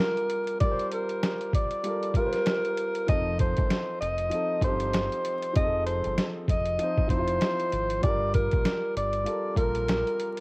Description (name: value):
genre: hip hop, boom-bap hip-hop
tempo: 97 BPM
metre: 4/4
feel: swing 58% on 16ths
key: G minor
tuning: A4 = 441 Hz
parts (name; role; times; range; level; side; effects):
- breathy tenor saxophone; melody; 0.0-10.4 s; Bb4 to Eb5; -28 LUFS; equal; high-pass filter, low-pass filter, cassette tape
- dark baby grand piano; accompaniment; 0.0-10.4 s; F3 to C5; -33 LUFS; equal; cassette tape, high-pass filter, low-pass filter
- trip hop sampler-style drum kit; drums; 0.2-10.4 s; hi-hat, kick drum, snare drum; -27 LUFS; equal; cassette tape
- deep dub fingered electric bass; bass; 3.1-10.0 s; F1 to Bb1; -32 LUFS; equal; none
room: light reverb, studio ambience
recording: home recording on cassette, vinyl crackle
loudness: -24 LUFS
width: side -27 dB against mid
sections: 0.0-10.4 A section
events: break 0.0-3.1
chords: 0.0 Gm9; 3.1 F7; 8.0 Gm9